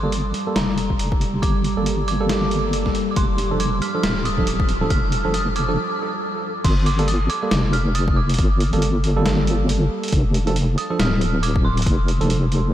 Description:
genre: deep dubstep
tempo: 138 BPM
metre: 4/4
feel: swing 58% on 16ths, half-time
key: G minor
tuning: A4 = 440 Hz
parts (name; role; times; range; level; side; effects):
- dark detuned synth bell; melody; 0.0-12.5 s; Bb5 to F6; -28 LUFS; right 1 dB; chorus, dub echo
- dark analog pad; sustained chords; 0.2-6.7 s; G3; -28 LUFS; right 1 dB; chorus
- barky tine electric piano; stabs; 0.0-12.4 s; F3 to A4; -26 LUFS; right 3 dB; overdrive, vintage 12-bit sampler grit, low-pass filter, dub echo
- deep soft wobble bass; bass; 0.0-12.7 s; D1 to G1; -20 LUFS; equal; chorus
- trip hop sampler-style drum kit; drums; 0.1-12.6 s; crash cymbal, hi-hat, snare drum; -27 LUFS; left 1 dB; none
- electronic kick drum; drums; 0.9-12.0 s; none; -21 LUFS; equal; overdrive
room: moderate huge ambient reverb, RT60 8.2 s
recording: dreamy mix soaked in reverb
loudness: -18 LUFS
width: side -12 dB against mid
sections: 0.0-6.6 A section; 6.6-12.7 B section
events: build-up 0.0-6.6; filter sweep on tine electric piano 0.0-6.6; break 5.8-6.6; drop 6.6-12.7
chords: 0.0 Gmadd9; 3.2 F6; 6.6 Gmadd9; 10.1 F6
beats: 0.12 0.56 0.99 | 1.43 1.86 2.30 2.73 | 3.17 3.60 4.04 4.47 | 4.91 5.34 5.78 6.21 | 6.65 7.08 7.52 7.95 | 8.38 8.82 9.26 9.69 | 10.12 10.56 10.99 11.43 | 11.86 12.30 12.73

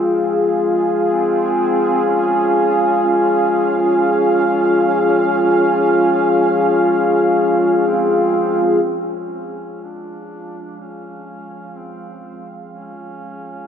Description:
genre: dark ambient drone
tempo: 62 BPM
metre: 4/4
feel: straight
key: C# major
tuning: A4 = 440 Hz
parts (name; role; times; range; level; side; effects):
- mellow duduk; melody; 0.0-13.7 s; B#3 to D4; -23 LUFS; right 1 dB; analog delay
- dark analog pad; sustained chords; 0.0-13.7 s; E#4 to E#5; -16 LUFS; left 1 dB; chorus
room: wet plate reverb, RT60 3.2 s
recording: dreamy mix soaked in reverb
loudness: -13 LUFS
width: side -8 dB against mid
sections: 0.0-8.8 A section; 8.8-13.7 B section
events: none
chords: 0.0 C#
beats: 0.15 | 1.10 2.06 3.01 3.98 | 4.94 5.91 6.88 7.87 | 8.85 9.82 10.79 11.76 | 12.73

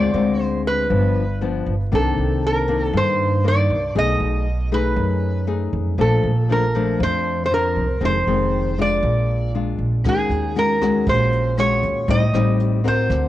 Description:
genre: bossa nova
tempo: 118 BPM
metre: 4/4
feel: straight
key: Bb major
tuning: A4 = 439 Hz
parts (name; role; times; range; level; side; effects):
- lap resonator guitar; melody; 0.0-13.3 s; Ab4 to D#5; -22 LUFS; right 2 dB; cassette tape
- nylon-string guitar; accompaniment; 0.0-13.3 s; F2 to Bb4; -22 LUFS; left 5 dB; cassette tape
- upright bass; bass; 0.0-13.3 s; F1 to G2; -22 LUFS; right 2 dB; none
- jazz brush drum kit; drums; 10.0-13.2 s; hi-hat, kick drum, rim click; -29 LUFS; right 1 dB; cassette tape
room: light reverb, studio ambience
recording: home recording on cassette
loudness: -17 LUFS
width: side -14 dB against mid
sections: 0.0-13.3 A section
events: none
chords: 0.0 Dm7b5; 0.9 G7; 1.9 Cm9; 4.0 B6; 6.0 Bbmaj7; 8.0 Fm7; 9.0 Bb7; 10.0 Ebm7; 12.1 Am7b5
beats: 0.39 0.90 1.41 | 1.92 2.42 2.93 3.44 | 3.95 4.46 4.97 5.47 | 5.98 6.49 7.00 7.51 | 8.02 8.53 9.03 9.54 | 10.05 10.56 11.06 11.57 | 12.08 12.59 13.10

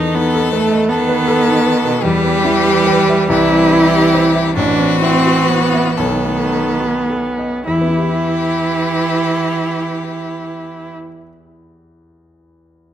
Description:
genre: classical, slow romantic movement for piano quartet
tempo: 33-53 BPM (dotted quarters)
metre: 6/8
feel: rubato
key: E minor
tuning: A4 = 440 Hz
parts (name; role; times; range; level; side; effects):
- rich violin; melody; 0.0-10.9 s; F#4 to A4; -21 LUFS; left 8 dB; none
- rich cello; second line; 0.0-10.9 s; D#3 to E3; -20 LUFS; right 5 dB; none
- rich viola; accompaniment; 0.0-10.9 s; G3 to E4; -16 LUFS; right 2 dB; none
- warm concert grand piano; accompaniment; 0.0-12.9 s; A1 to A5; -19 LUFS; left 2 dB; none
room: moderate recital hall reverb, RT60 1.6 s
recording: close, detailed microphones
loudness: -12 LUFS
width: side -10 dB against mid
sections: 0.0-7.7 A section; 7.7-12.9 B section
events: slowing down 0.9-7.7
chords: 0.0 B7/E; 2.0 Em; 3.3 C; 4.6 F#m7b5/A; 6.0 B7; 7.7 Em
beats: 0.89 | 2.04 3.29 | 4.56 5.99 | 7.66 9.25 | 10.84 12.42

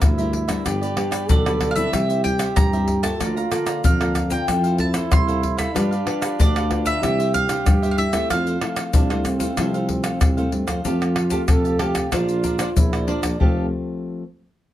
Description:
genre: samba and choro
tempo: 94 BPM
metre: 4/4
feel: straight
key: F major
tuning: A4 = 442 Hz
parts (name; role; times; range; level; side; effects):
- mandolin; melody; 0.0-10.2 s; Bb4 to C6; -25 LUFS; right 1 dB; none
- breathy trombone; second line; 0.0-13.7 s; C4 to A4; -27 LUFS; right 2 dB; none
- cavaquinho; accompaniment; 0.0-13.7 s; D4 to Bb5; -31 LUFS; right 3 dB; none
- nylon-string guitar; accompaniment; 0.0-14.2 s; G2 to C5; -28 LUFS; left 3 dB; none
- mellow tuba; bass; 0.0-13.7 s; F1 to G2; -24 LUFS; equal; none
- tube shaker, surdo, pandeiro and tamborim; percussion; 0.0-13.6 s; none; -21 LUFS; left 1 dB; none
room: light reverb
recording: none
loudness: -18 LUFS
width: side -13 dB against mid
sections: 0.0-10.9 A section; 10.9-13.4 B section; 13.4-14.7 C section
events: none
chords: 0.0 C7; 0.7 G; 1.9 C; 3.2 Bbmaj7/D; 4.5 F; 5.8 G7; 7.0 Cadd9; 8.3 Fmaj7; 10.9 Fadd9; 12.1 Bbadd9; 13.4 Fadd9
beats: 0.02 | 0.66 1.30 1.93 2.57 | 3.21 3.84 4.48 5.12 | 5.75 6.39 7.03 7.67 | 8.30 8.94 9.58 10.21 | 10.85 11.49 12.12 12.76 | 13.40 14.04

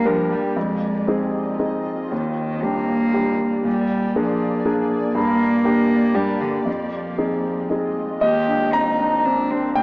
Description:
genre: neoclassical piano and strings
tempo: 117 BPM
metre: 3/4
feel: rubato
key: Eb major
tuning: A4 = 441 Hz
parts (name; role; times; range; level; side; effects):
- warm cello; second line; 0.0-9.8 s; D3 to G4; -22 LUFS; right 1 dB; cassette tape
- clear concert grand piano; accompaniment; 0.0-9.8 s; Eb2 to Bb5; -20 LUFS; equal; cassette tape
- granular cloud pad; sustained chords; 0.0-9.8 s; Ab3 to Ab5; -30 LUFS; equal; built-in reverb, cassette tape
room: wet spring reverb, RT60 1.8 s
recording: home recording on cassette, small speaker sound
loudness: -18 LUFS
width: side -27 dB against mid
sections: 0.0-8.2 A section; 8.2-9.8 A section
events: none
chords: 0.0 Gm; 0.6 Fm7; 2.1 Ebmaj7; 3.7 Bb7; 5.2 Gm; 6.7 Fm7; 8.2 Ebmaj7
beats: 0.04 | 0.56 1.07 1.58 | 2.11 2.63 3.14 | 3.65 4.16 4.66 | 5.16 5.65 6.15 | 6.67 7.18 7.70 | 8.22 8.74 9.26 | 9.77

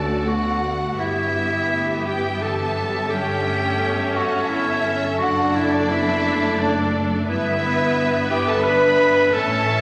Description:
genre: classical, slow romantic movement for symphony orchestra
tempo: 86 BPM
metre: 3/4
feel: rubato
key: unclear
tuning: A4 = 440 Hz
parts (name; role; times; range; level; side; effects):
- warm studio violin section; melody; 0.0-9.8 s; D5 to E5; -34 LUFS; equal; none
- clear clarinet; second line; 0.0-9.8 s; D4 to B4; -24 LUFS; equal; none
- rich studio violin section; second line; 0.0-9.8 s; D5 to B5; -29 LUFS; equal; none
- rich studio viola section; accompaniment; 0.0-9.8 s; A3 to B4; -27 LUFS; equal; none
- mellow French horn section; sustained chords; 0.0-9.8 s; E3 to D4; -31 LUFS; equal; none
- dark studio cello section; bass; 0.0-9.8 s; D2 to A2; -33 LUFS; equal; none
- dark studio double bass section; bass; 0.0-9.8 s; F#1 to D2; -32 LUFS; equal; none
room: wet scoring stage reverb, RT60 1.7 s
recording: none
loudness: -20 LUFS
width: mono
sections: 0.0-9.8 A section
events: none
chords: 0.0 D; 1.0 Em/G; 3.1 A7/G; 5.2 D/F#; 7.3 Em/G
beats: 0.25 | 0.97 1.69 2.41 | 3.10 3.81 4.51 | 5.20 5.90 6.59 | 7.28 7.97 8.65 | 9.32

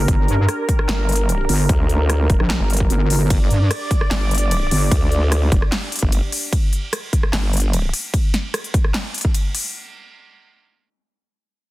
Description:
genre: heavy wobble dubstep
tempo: 149 BPM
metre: 4/4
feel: half-time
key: G minor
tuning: A4 = 440 Hz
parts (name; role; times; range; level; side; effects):
- supersaw pad; sustained chords; 0.0-6.5 s; D4 to D5; -26 LUFS; right 1 dB; sidechain pumping, low-pass filter
- wobble bass; bass; 0.0-4.9 s; G1 to G2; -17 LUFS; equal; chorus, overdrive
- big-room dance drum kit; drums; 0.1-9.6 s; handclaps, hi-hat, ride cymbal, rim click, snare drum; -24 LUFS; equal; overdrive
- electronic kick drum; drums; 0.1-9.3 s; none; -18 LUFS; equal; overdrive
- vowel-sweep wobble bass; bass; 0.9-7.9 s; F1 to D2; -18 LUFS; equal; chorus, overdrive
room: little or no reverb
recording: dense, heavily limited modern master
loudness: -16 LUFS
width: side -18 dB against mid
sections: 0.0-9.7 A section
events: drop 0.0-9.7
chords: 0.0 Gm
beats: | 0.08 0.48 0.89 1.29 | 1.69 2.10 2.50 2.90 | 3.30 3.71 4.11 4.51 | 4.92 5.32 5.72 6.12 | 6.53 6.93 7.33 7.73 | 8.14 8.54 8.94 9.34

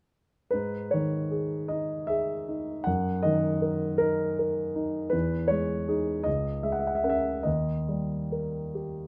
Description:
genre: classical, romantic nocturne for solo piano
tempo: 52 BPM (dotted quarters)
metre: 6/8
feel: uneven beats, rubato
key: G# minor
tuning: A4 = 440 Hz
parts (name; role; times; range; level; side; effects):
- warm grand piano; solo; 0.5-9.1 s; C#2 to F#5; -29 LUFS; equal; none
room: light reverb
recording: none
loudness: -29 LUFS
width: mono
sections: 0.5-9.1 A section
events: none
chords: 0.5 G#5; 2.9 D#m/F#; 5.1 Emaj7; 6.3 C#m69; 7.5 D#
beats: | 0.53 1.71 | 2.86 4.02 | 5.13 6.26 | 7.45 8.74

